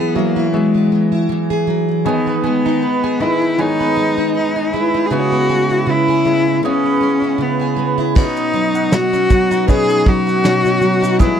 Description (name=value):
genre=acoustic pop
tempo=79 BPM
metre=4/4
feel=swing 55% on 16ths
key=B major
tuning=A4 = 445 Hz
part: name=warm cello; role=melody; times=0.0-11.4 s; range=G#3 to G#4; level=-17 LUFS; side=left 2 dB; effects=none
part: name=bright concert grand piano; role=accompaniment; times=0.0-11.4 s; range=D#3 to E5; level=-25 LUFS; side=left 5 dB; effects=none
part: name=picked plugged-in steel-string acoustic guitar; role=accompaniment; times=0.0-11.4 s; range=B2 to G#4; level=-18 LUFS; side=right 1 dB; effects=double-tracked left and right
part: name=mandolin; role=arpeggios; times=2.1-11.4 s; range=G#3 to G#5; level=-23 LUFS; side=right 9 dB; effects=none
part: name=vintage brush drum kit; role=drums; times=8.2-11.4 s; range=crash cymbal, kick drum, shaker, snare drum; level=-14 LUFS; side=right 1 dB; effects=none
room=little or no reverb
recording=dry, close 1970s-style studio recording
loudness=-13 LUFS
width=side -8 dB against mid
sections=0.0-8.2 A section; 8.2-11.4 B section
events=none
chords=0.0 Eadd9; 2.1 G#m/D#; 5.1 C#m7; 8.2 Badd9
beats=0.53 1.30 | 2.06 2.83 3.59 4.35 | 5.12 5.88 6.64 7.40 | 8.16 8.92 9.68 10.44 | 11.20